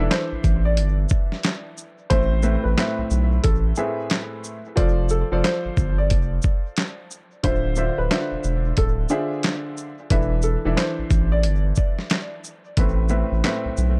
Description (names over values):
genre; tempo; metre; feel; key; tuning
hip hop, boom-bap hip-hop; 90 BPM; 4/4; swing 63% on 16ths; A minor; A4 = 441 Hz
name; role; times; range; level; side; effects
warm upright piano; melody; 0.0-11.6 s; G#4 to D5; -31 LUFS; equal; high-pass filter, low-pass filter, tape echo
warm grand piano; accompaniment; 0.0-14.0 s; A2 to E5; -29 LUFS; equal; high-pass filter, low-pass filter, tape echo
saturated sub bass; bass; 0.0-14.0 s; D1 to B1; -24 LUFS; equal; none
dusty soul sampler-style drum kit; drums; 0.1-14.0 s; handclaps, hi-hat, kick drum, shaker, snare drum; -24 LUFS; equal; none
room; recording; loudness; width
little or no reverb; echo-heavy mix; -22 LUFS; mono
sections
0.0-12.8 A section; 12.8-14.0 B section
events
none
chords
0.0 E7sus4; 2.1 Amadd9; 4.8 F6; 7.4 Dm9; 10.1 E7sus4; 12.8 Amadd9